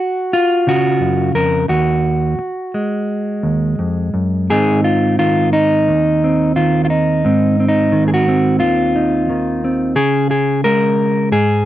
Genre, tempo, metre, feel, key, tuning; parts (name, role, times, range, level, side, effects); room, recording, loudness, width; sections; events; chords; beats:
folk, solo fingerstyle acoustic guitar; 88 BPM; 4/4; rubato; Ab mixolydian; A4 = 440 Hz
mellow electric guitar; solo; 0.0-11.7 s; Eb2 to Bb4; -13 LUFS; equal
light reverb; -13 LUFS; side -13 dB against mid
0.0-4.5 A section; 4.5-11.7 B section
0.0 Gb5; 1.7 Ebmadd9; 4.5 Ab6; 10.0 Db5
0.33 1.00 | 1.69 2.38 3.08 3.79 | 4.50 5.20 5.89 6.57 | 7.25 7.93 8.61 9.29 | 9.97 10.65 11.33